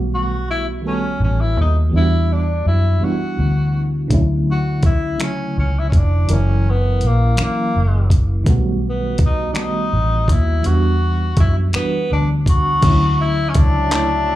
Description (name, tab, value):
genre	slow six-eight R&B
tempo	55 BPM (dotted quarters)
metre	6/8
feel	straight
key	D major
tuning	A4 = 440 Hz
part	FM electric piano with tremolo	accompaniment	0.0-14.4 s	C#3 to C#5	-23 LUFS	right 2 dB	slapback echo
part	vintage muted fingered electric bass	bass	0.0-14.4 s	F1 to F#2	-17 LUFS	equal	none
part	warm tenor saxophone	melody	0.1-14.4 s	A#3 to F#4	-22 LUFS	left 2 dB	slapback echo, tape echo
part	dusty soul sampler-style drum kit	drums	4.1-14.1 s	crash cymbal, finger snaps, handclaps, hi-hat, kick drum	-16 LUFS	equal	none
part	lush unison pad	sustained chords	12.8-14.4 s	F#3 to C#6	-30 LUFS	left 2 dB	chorus
room	light reverb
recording	live gig heard through the venue's PA, club reverb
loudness	-15 LUFS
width	side -14 dB against mid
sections	0.0-12.8 A section; 12.8-14.4 B section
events	none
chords	0.0 B7b13; 1.9 Em9; 4.1 Dmaj9; 6.3 F#7; 8.5 B7b13; 10.6 Em9; 12.8 Dmaj9